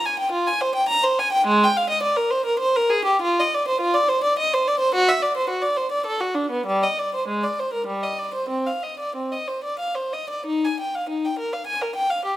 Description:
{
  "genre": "classical, baroque-style suite movement for unaccompanied violin",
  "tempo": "87-108 BPM",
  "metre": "3/4",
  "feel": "rubato",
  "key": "C minor from 3.2 s",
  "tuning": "A4 = 439 Hz",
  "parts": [
    { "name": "warm violin", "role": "solo", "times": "0.0-12.4 s", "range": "G3 to Bb5", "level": "-20 LUFS", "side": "equal", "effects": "none" }
  ],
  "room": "light reverb",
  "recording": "close, detailed microphones",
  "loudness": "-20 LUFS",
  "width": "side -14 dB against mid",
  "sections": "0.0-10.5 A section; 10.5-12.4 A section",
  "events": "none",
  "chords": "none",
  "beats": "0.33 0.89 | 1.46 2.04 2.60 | 3.22 3.81 4.37 | 4.93 5.49 6.06 | 6.67 7.28 7.88 | 8.50 9.15 9.79 | 10.46 11.09 11.67 | 12.25"
}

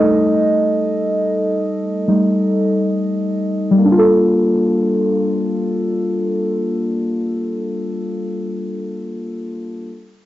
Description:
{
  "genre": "hip hop",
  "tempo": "free time",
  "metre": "none",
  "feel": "none",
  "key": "G minor",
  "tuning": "A4 = 440 Hz",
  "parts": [
    { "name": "muted felt-like synth keys", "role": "accompaniment", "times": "0.0-9.9 s", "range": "G3 to Eb5", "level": "-16 LUFS", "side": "equal", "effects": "chorus" }
  ],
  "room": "wet booth ambience, RT60 0.2 s",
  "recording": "home recording on cassette, nothing above 7.7 kHz",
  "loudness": "-15 LUFS",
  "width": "side -14 dB against mid",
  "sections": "0.0-3.8 A section; 3.8-7.4 B section",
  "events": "synth keys solo 0.0-3.8",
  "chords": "0.0 Gsus2; 3.8 Gm9",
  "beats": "free time"
}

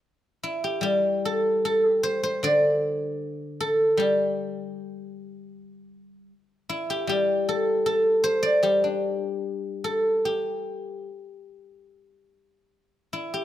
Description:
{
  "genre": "chinese traditional, Chinese solo plucked strings",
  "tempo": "76 BPM",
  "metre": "4/4",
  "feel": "rubato",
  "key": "unclear",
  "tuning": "A4 = 442 Hz",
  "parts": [
    { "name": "guzheng", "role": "solo", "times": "0.4-13.4 s", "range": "D3 to D5", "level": "-23 LUFS", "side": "equal", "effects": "none" }
  ],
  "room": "moderate recital hall reverb, RT60 1.6 s",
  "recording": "close, detailed microphones",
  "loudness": "-22 LUFS",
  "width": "side -12 dB against mid",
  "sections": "0.0-13.4 A section",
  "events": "none",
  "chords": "none",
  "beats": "0.02 0.83 1.64 | 2.44 3.23 4.00 4.77 | 5.54 6.31 7.09 7.87 | 8.65 9.45 10.25 11.08 | 11.92 12.73"
}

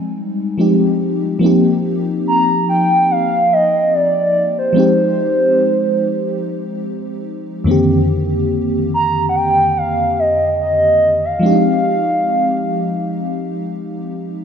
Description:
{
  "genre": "R&B",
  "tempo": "72 BPM",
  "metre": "4/4",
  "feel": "swing 54% on 16ths",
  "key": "F dorian",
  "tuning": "A4 = 440 Hz",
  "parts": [
    { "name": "FM electric piano with soft pad layer", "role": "accompaniment", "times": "0.0-14.4 s", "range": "F2 to G4", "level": "-17 LUFS", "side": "left 1 dB", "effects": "chorus, tremolo" },
    { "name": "hollow clarinet-like synth lead", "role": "melody", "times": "2.3-13.7 s", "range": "C5 to Bb5", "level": "-15 LUFS", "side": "right 1 dB", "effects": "chorus, ping-pong delay" }
  ],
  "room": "moderate lush hall reverb, RT60 2.6 s",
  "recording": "dark, warm production",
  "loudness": "-13 LUFS",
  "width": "side -7 dB against mid",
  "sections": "0.0-14.4 A section",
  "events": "none",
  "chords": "0.0 Fm9; 1.4 Eb69/F; 4.8 Fm9; 7.7 Cm9/F; 11.4 Fm9",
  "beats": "0.59 | 1.42 2.25 3.09 3.92 | 4.75 5.59 6.42 7.25 | 8.09 8.92 9.75 10.59 | 11.42 12.25 13.09 13.92"
}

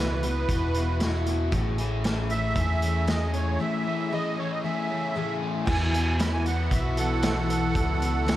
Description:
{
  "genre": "folk rock and heartland rock",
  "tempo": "116 BPM",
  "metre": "4/4",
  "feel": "straight",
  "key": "E major",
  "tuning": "A4 = 439 Hz",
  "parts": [
    { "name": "musette accordion", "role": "melody", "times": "0.0-8.4 s", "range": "A4 to B5", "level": "-30 LUFS", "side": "right 3 dB", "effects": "tape echo" },
    { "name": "picked twelve-string acoustic guitar", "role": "accompaniment", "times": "0.0-8.4 s", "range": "E2 to G#4", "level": "-30 LUFS", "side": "left 3 dB", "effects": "tape echo" },
    { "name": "biting overdriven guitar", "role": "riff", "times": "0.0-8.4 s", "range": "E2 to G#4", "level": "-34 LUFS", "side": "equal", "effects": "tape echo" },
    { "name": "picked electric bass", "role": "bass", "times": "0.0-8.4 s", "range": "E1 to E2", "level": "-27 LUFS", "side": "equal", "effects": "none" },
    { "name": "vintage drum kit", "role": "drums", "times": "0.2-8.4 s", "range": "crash cymbal, hi-hat, kick drum, snare drum", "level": "-29 LUFS", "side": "equal", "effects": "tape echo" },
    { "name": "mellow tonewheel organ", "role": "sustained chords", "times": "5.7-8.4 s", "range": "E3 to B4", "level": "-40 LUFS", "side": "right 3 dB", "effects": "none" }
  ],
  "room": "light reverb, studio ambience",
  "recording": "echo-heavy mix",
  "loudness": "-24 LUFS",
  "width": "side -14 dB against mid",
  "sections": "0.0-5.7 A section; 5.7-8.4 B section",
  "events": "break 3.6-5.7; accordion solo 5.7-8.4",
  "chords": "0.0 Esus2; 1.5 Amaj7; 5.7 Esus2",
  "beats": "0.49 1.01 | 1.53 2.05 2.56 3.08 | 3.60 4.12 4.64 5.16 | 5.68 6.20 6.72 7.24 | 7.76 8.28"
}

